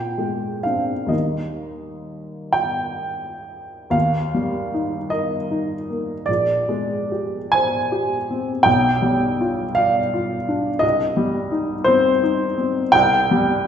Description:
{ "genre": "classical, romantic nocturne for solo piano", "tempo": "41-59 BPM (dotted quarters)", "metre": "12/8", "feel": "rubato", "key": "Eb major", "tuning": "A4 = 440 Hz", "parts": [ { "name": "warm upright piano", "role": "solo", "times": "0.0-13.7 s", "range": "Bb1 to Ab5", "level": "-18 LUFS", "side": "equal", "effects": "none" } ], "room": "wet recital hall reverb, RT60 1.6 s", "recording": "heard from further back in the room", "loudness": "-18 LUFS", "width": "side -8 dB against mid", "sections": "0.0-3.9 A section; 3.9-13.7 B section", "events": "none", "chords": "0.0 Bb9; 1.1 Eb; 6.3 Bb13; 8.7 G7/B; 10.8 Cm; 12.9 C5" }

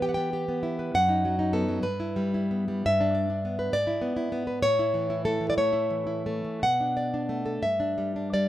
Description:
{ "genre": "romantic piece for solo classical guitar", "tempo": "52-70 BPM (dotted quarters)", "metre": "6/8", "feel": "rubato", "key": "unclear", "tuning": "A4 = 441 Hz", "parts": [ { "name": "nylon-string guitar", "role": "solo", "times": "0.0-8.5 s", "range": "F#2 to G5", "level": "-24 LUFS", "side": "equal", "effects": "none" } ], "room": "light reverb", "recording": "minimal, uncompressed stereo recording", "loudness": "-24 LUFS", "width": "side -13 dB against mid", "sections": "0.0-8.5 A section", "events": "none", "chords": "0.0 Em; 1.0 B/F#; 1.8 Em/G; 2.9 Em7/G; 3.7 E7/G#; 4.6 A; 6.6 Bm7; 7.7 Em7/G" }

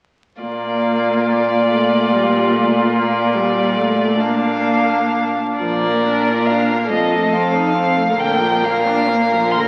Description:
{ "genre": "classical, slow romantic movement for string quartet", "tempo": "46 BPM (dotted quarters)", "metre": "6/8", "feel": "uneven beats, rubato", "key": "Bb major", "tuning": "A4 = 440 Hz", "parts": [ { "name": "rich violin", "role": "melody", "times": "0.4-9.7 s", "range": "D5 to C6", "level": "-22 LUFS", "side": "equal", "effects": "none" }, { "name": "dark violin", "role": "second line", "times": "0.4-9.7 s", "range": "D4 to Bb4", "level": "-23 LUFS", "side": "equal", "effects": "none" }, { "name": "warm viola", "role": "accompaniment", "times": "0.4-9.7 s", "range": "D3 to F4", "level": "-23 LUFS", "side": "equal", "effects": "none" }, { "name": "warm cello", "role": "bass", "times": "0.4-9.7 s", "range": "F2 to Bb2", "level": "-24 LUFS", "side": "equal", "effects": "none" } ], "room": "wet scoring stage reverb, RT60 2.0 s", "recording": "very old 78 rpm record, vinyl crackle", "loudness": "-17 LUFS", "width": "mono", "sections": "0.4-5.6 A section; 5.6-9.7 B section", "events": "none", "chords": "0.4 Bb; 6.9 F7; 8.2 Bb" }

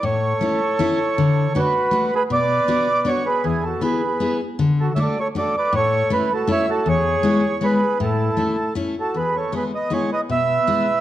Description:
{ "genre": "alpine folk, alpine dance band", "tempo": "158 BPM", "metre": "3/4", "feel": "rubato", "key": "A major", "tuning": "A4 = 441 Hz", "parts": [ { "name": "mellow accordion", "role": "melody", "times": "0.0-11.0 s", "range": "G#4 to E5", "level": "-20 LUFS", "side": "right 2 dB", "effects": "none" }, { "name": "mellow trumpet", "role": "second line", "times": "0.0-11.0 s", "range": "E4 to C#5", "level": "-27 LUFS", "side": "right 4 dB", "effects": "none" }, { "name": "picked steel-string acoustic guitar", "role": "accompaniment", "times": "0.0-10.9 s", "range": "E2 to G#4", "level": "-22 LUFS", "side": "left 3 dB", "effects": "none" } ], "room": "wet recital hall reverb, RT60 1.5 s", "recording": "dark, warm production", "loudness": "-18 LUFS", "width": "side -13 dB against mid", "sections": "0.0-9.2 A section; 9.2-11.0 B section", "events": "none", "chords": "0.0 A; 1.2 D; 2.3 Bm; 3.4 E; 4.6 D; 5.7 A; 6.9 E; 8.0 A; 9.2 E" }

